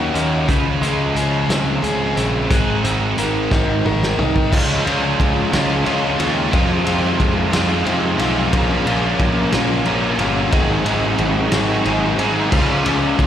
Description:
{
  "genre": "indie rock",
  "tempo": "60 BPM (dotted quarters)",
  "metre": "6/8",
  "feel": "straight",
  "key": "Db major",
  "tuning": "A4 = 445 Hz",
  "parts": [
    { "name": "high-gain distorted guitar", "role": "riff", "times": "0.0-13.3 s", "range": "F2 to Ab4", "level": "-21 LUFS", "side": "right 10 dB", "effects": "distortion, ensemble chorus, analog delay, slapback echo" },
    { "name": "overdriven electric guitar", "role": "riff", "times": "0.0-13.3 s", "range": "F2 to Bb4", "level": "-20 LUFS", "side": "left 6 dB", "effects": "slapback echo" },
    { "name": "fuzz picked electric bass", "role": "bass", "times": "0.0-13.3 s", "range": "G1 to Ab2", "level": "-22 LUFS", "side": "right 1 dB", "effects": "overdrive" },
    { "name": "loose indie drum kit", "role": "drums", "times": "0.2-13.3 s", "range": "crash cymbal, hi-hat, kick drum, ride cymbal, snare drum, toms", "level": "-21 LUFS", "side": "equal", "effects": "none" },
    { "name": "dark analog pad", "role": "sustained chords", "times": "5.0-13.3 s", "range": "Db4 to Db6", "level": "-30 LUFS", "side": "right 1 dB", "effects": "none" }
  ],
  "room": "little or no reverb",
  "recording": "live gig heard through the venue's PA, recital hall reverb",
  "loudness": "-15 LUFS",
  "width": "side -10 dB against mid",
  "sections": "0.0-4.5 A section; 4.5-13.3 B section",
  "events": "drum fill 3.5-4.5",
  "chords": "0.5 Dbmaj7; 2.5 Abadd9; 4.5 Dbmaj7; 6.5 Fm7; 8.5 Bbm7; 10.5 Ab7sus4; 12.5 Dbmaj7"
}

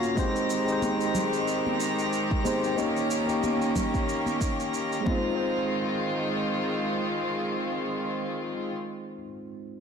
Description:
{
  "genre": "sunset chillout",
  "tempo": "92 BPM",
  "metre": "4/4",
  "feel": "swing 57% on 16ths",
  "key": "F minor",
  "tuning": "A4 = 440 Hz",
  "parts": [
    { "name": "bell-like tine electric piano", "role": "accompaniment", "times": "0.0-9.8 s", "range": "Ab3 to Db5", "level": "-29 LUFS", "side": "equal", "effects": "auto-pan, low-pass filter, ping-pong delay" },
    { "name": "rich chamber string section", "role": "sustained chords", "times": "0.0-8.8 s", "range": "Db3 to F5", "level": "-30 LUFS", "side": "equal", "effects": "vintage 12-bit sampler grit" },
    { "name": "cabasa", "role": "drums", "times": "0.0-5.0 s", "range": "none", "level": "-40 LUFS", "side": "right 5 dB", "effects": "overdrive" },
    { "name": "drifting glass-harmonics texture", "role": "texture", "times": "0.0-5.4 s", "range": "Bb5 to Bb6", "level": "-36 LUFS", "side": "left 1 dB", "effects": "chorus, built-in reverb" },
    { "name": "electronic kick drum", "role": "drums", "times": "0.2-5.2 s", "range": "none", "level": "-30 LUFS", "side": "right 1 dB", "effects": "overdrive" },
    { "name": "congas", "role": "percussion", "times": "0.8-5.2 s", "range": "none", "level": "-34 LUFS", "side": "left 1 dB", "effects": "none" }
  ],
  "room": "moderate lush hall reverb, RT60 2.4 s",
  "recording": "blown-out, overdriven recording, overdrive",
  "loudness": "-25 LUFS",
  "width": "side -6 dB against mid",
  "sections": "0.0-5.4 A section; 5.4-8.0 B section",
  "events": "filter sweep on tine electric piano 0.0-5.4",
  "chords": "0.2 Abmaj7; 2.8 Eb7; 5.1 Fm7"
}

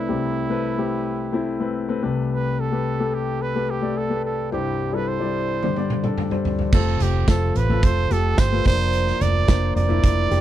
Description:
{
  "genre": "piano-driven pop",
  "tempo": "108 BPM",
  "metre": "4/4",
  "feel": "straight",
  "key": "unclear",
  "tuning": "A4 = 441 Hz",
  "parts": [
    { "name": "clear trumpet", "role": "melody", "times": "0.0-10.4 s", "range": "E4 to D5", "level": "-26 LUFS", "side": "right 6 dB", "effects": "none" },
    { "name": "warm grand piano", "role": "accompaniment", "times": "0.0-10.4 s", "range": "C2 to D5", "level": "-24 LUFS", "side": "left 4 dB", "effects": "none" },
    { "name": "loose indie drum kit", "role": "drums", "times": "5.6-10.4 s", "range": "crash cymbal, hi-hat, kick drum, snare drum, toms", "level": "-22 LUFS", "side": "right 1 dB", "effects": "none" },
    { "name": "vintage muted fingered electric bass", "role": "bass", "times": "6.7-10.4 s", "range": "F1 to A1", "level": "-21 LUFS", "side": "right 1 dB", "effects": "none" },
    { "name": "tambourine", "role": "percussion", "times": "7.3-9.6 s", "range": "none", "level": "-40 LUFS", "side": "left 15 dB", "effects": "none" }
  ],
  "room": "little or no reverb",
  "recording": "none",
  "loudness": "-19 LUFS",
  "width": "side -12 dB against mid",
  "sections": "0.0-6.7 A section; 6.7-10.4 B section",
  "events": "drum fill 5.6-6.7",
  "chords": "0.0 Amadd9/C; 2.0 Gadd9/C; 4.5 C; 5.6 Gsus4; 6.7 F; 8.7 Bbadd9/F"
}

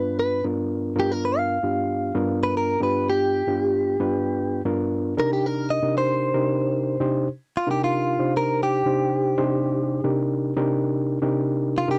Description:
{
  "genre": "blues",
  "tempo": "114 BPM",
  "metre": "4/4",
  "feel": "straight",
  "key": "C minor",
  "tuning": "A4 = 440 Hz",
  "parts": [
    { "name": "direct-recorded clean electric guitar", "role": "melody", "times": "0.0-12.0 s", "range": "F4 to F5", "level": "-26 LUFS", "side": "equal", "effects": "none" },
    { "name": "overdriven reed electric piano", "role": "accompaniment", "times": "0.0-12.0 s", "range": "G2 to C5", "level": "-25 LUFS", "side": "equal", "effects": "none" }
  ],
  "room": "light reverb",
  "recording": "dry, close 1970s-style studio recording",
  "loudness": "-23 LUFS",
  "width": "mono",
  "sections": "0.0-7.3 A section; 7.3-12.0 B section",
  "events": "clean electric guitar solo 7.3-12.0",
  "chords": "0.0 G7#9; 5.2 Cm7"
}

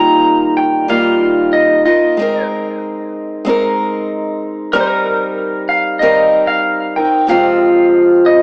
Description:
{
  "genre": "folk",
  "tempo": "94 BPM",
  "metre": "4/4",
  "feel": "straight",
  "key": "unclear",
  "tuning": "A4 = 439 Hz",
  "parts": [
    { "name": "pedal steel guitar", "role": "melody", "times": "0.0-8.4 s", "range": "Bb4 to Bb5", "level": "-16 LUFS", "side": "equal", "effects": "cassette tape, tape echo" },
    { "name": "picked steel-string acoustic guitar", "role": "accompaniment", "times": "0.0-8.4 s", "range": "F2 to Bb4", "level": "-16 LUFS", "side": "equal", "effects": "none" }
  ],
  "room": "wet spring reverb, RT60 1.4 s",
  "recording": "home recording on cassette, small speaker sound",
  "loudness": "-14 LUFS",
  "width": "mono",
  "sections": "0.0-8.4 A section",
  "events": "none",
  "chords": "0.0 Ebadd9; 2.2 Abadd9; 4.7 Cm7/G; 7.3 Fm"
}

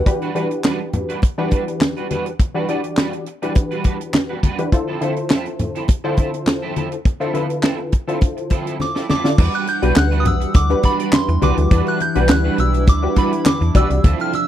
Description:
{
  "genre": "early-eighties boogie funk",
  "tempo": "103 BPM",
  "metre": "4/4",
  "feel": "straight",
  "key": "E minor",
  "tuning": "A4 = 440 Hz",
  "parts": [
    { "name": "funky polysynth comp", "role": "accompaniment", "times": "0.0-14.0 s", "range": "D3 to D5", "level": "-22 LUFS", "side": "left 2 dB", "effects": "chorus" },
    { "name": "chorused pulse-width pad", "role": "sustained chords", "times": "0.0, 9.4-14.5 s", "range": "C3 to F#5", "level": "-24 LUFS", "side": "right 2 dB", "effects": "none" },
    { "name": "slap-like FM bass", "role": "bass", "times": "0.0, 9.4-14.1 s", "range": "B1 to E2", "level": "-17 LUFS", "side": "equal", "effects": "none" },
    { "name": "electric guitar at the edge of break-up", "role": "riff", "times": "0.1-14.4 s", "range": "F3 to D5", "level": "-27 LUFS", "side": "right 6 dB", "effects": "ensemble chorus" },
    { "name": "tight funk drum kit", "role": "drums", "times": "0.1-14.5 s", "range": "crash cymbal, handclaps, hi-hat, kick drum, snare drum", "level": "-16 LUFS", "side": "equal", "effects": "none" },
    { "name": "congas", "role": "percussion", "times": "0.1-14.5 s", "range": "none", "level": "-26 LUFS", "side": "left 3 dB", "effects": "none" },
    { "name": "soft synth bell", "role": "melody", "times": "8.8-14.5 s", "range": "B5 to G6", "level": "-22 LUFS", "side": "right 1 dB", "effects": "chorus, slapback echo" }
  ],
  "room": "small room ambience",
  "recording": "dry, close 1970s-style studio recording",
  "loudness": "-16 LUFS",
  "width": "side -11 dB against mid",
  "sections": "0.1-9.4 A section; 9.4-14.5 B section",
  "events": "drum fill 8.8-9.4",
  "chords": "0.1 Em9; 4.7 Dm9; 9.4 Em9"
}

